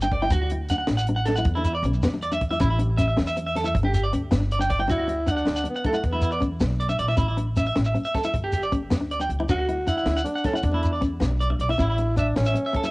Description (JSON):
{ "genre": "highlife guitar band", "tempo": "105 BPM (dotted quarters)", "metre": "12/8", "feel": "straight", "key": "D major", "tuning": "A4 = 440 Hz", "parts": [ { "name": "nylon-string guitar", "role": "accompaniment", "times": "0.0-12.9 s", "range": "B3 to E4", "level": "-29 LUFS", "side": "left 2 dB", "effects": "cassette tape" }, { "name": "clean electric guitar", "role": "arpeggios", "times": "0.0-12.9 s", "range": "E4 to G5", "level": "-27 LUFS", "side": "right 2 dB", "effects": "cassette tape, analog delay" }, { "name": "upright bass", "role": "bass", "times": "0.0-12.5 s", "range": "G1 to E2", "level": "-25 LUFS", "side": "equal", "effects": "none" }, { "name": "shekere", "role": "percussion", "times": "0.0-12.9 s", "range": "none", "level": "-27 LUFS", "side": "equal", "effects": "none" }, { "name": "compact cocktail drum kit", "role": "drums", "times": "0.1-12.8 s", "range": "hi-hat, kick drum, snare drum", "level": "-29 LUFS", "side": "equal", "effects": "cassette tape" }, { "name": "growling tenor saxophone", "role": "melody", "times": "4.9-12.9 s", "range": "A3 to F#4", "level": "-26 LUFS", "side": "equal", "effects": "cassette tape" } ], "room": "light reverb", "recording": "home recording on cassette", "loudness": "-21 LUFS", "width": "side -22 dB against mid", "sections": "0.0-4.9 A section; 4.9-12.9 B section", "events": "none", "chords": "0.3 D; 1.5 E5; 2.6 A; 3.7 G5; 4.9 D; 6.0 E5; 7.2 A; 8.3 G5; 9.5 D; 10.6 E5; 11.8 A" }